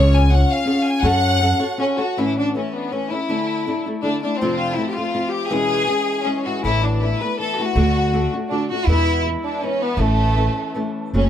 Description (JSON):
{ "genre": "mexican folk, mariachi", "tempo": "161 BPM", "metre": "3/4", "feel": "rubato", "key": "A major", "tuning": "A4 = 438 Hz", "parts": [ { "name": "clear studio violin section", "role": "melody", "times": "0.0-11.3 s", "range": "A3 to G#5", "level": "-21 LUFS", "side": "left 1 dB", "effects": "analog delay" }, { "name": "flamenco guitar", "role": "accompaniment", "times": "0.0-11.3 s", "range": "E2 to C#5", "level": "-23 LUFS", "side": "left 2 dB", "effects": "none" }, { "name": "upright bass", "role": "bass", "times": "0.0-1.5, 6.6-11.3 s", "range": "F#1 to F#2", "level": "-17 LUFS", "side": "right 1 dB", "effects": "none" } ], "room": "light reverb", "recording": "close, detailed microphones", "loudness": "-17 LUFS", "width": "side -10 dB against mid", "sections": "0.0-2.2 A section; 2.2-11.1 B section", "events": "none", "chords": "0.0 C#; 1.0 F#m; 2.2 A; 3.3 Dsus2; 4.4 F; 5.5 E6; 6.6 Asus2; 7.8 D; 8.9 E; 10.0 A" }